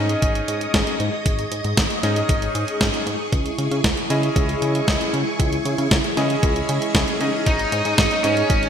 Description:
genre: italo disco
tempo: 116 BPM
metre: 4/4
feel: straight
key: C# minor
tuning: A4 = 442 Hz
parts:
  - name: string machine, full ensemble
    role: sustained chords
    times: 0.0-8.7 s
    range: E4 to D#6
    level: -25 LUFS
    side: equal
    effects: ensemble chorus
  - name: bright electric grand piano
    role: stabs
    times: 0.0-8.7 s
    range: C#4 to D#5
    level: -25 LUFS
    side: equal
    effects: digital delay
  - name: chorused synth bass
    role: bass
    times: 0.0-8.7 s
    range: G#1 to C#3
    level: -25 LUFS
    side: equal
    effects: tube saturation, digital delay
  - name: clean 12-bit digital drum machine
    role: drums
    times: 0.1-8.7 s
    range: hi-hat, snare drum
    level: -24 LUFS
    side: equal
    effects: gated reverb
  - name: electronic kick drum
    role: drums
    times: 0.2-8.6 s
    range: none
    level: -22 LUFS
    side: equal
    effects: none
  - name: high-gain lead guitar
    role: melody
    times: 7.5-8.7 s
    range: C#4 to D#4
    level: -21 LUFS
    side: left 1 dB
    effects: distortion, ping-pong delay
room: moderate lush hall reverb, RT60 1.9 s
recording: bright 1980s-style digital production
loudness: -18 LUFS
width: side -8 dB against mid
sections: 0.0-8.7 A section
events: none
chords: 0.0 G#sus4; 3.3 C#madd9; 7.5 G#sus4

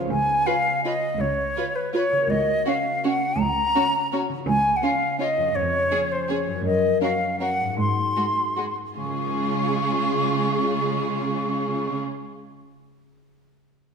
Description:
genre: classical, orchestral ballroom waltz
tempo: 148-180 BPM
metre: 3/4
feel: rubato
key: Db major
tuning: A4 = 441 Hz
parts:
  - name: concert harp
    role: arpeggios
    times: 0.0-12.9 s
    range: F2 to F5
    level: -30 LUFS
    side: left 7 dB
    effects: none
  - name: bright silver concert flute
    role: second line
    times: 0.1-12.0 s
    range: Cb5 to Db6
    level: -23 LUFS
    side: equal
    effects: none
  - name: rich studio cello section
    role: bass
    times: 0.1-12.0 s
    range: Db2 to Db3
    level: -28 LUFS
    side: right 5 dB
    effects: none
  - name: rich studio violin section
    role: melody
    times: 0.5-12.0 s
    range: Ab4 to Db5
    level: -37 LUFS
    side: left 4 dB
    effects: none
  - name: rich studio violin section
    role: second line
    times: 0.5-12.0 s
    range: F4 to Cb5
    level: -34 LUFS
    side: left 2 dB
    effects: none
  - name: dark studio viola section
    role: accompaniment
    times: 0.5-12.0 s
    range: Ab3 to F4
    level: -29 LUFS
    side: right 2 dB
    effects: none
room: wet scoring stage reverb, RT60 1.6 s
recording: none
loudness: -21 LUFS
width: side -6 dB against mid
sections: 0.1-9.0 A section; 9.0-11.2 B section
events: slowing down 6.1-9.0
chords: 0.1 Db7; 2.3 Gb/Db; 4.5 Db; 5.6 Db/F; 6.7 Gbmaj7; 7.8 Ab7; 9.0 Db

